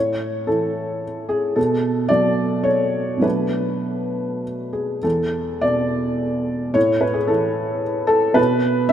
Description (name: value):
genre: neoclassical minimalist piano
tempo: 98-112 BPM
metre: 3/4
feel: rubato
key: unclear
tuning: A4 = 441 Hz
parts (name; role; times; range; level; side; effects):
- felt-muted upright piano; solo; 0.0-8.9 s; E2 to E5; -18 LUFS; equal; none
room: moderate lush hall reverb, RT60 2.8 s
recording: rough home demo mix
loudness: -18 LUFS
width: side -10 dB against mid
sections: 0.0-5.0 A section; 5.0-8.9 A section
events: none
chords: 0.0 A; 1.6 Bm; 3.2 Bm7; 5.0 E7sus4; 6.8 A5; 8.4 N.C.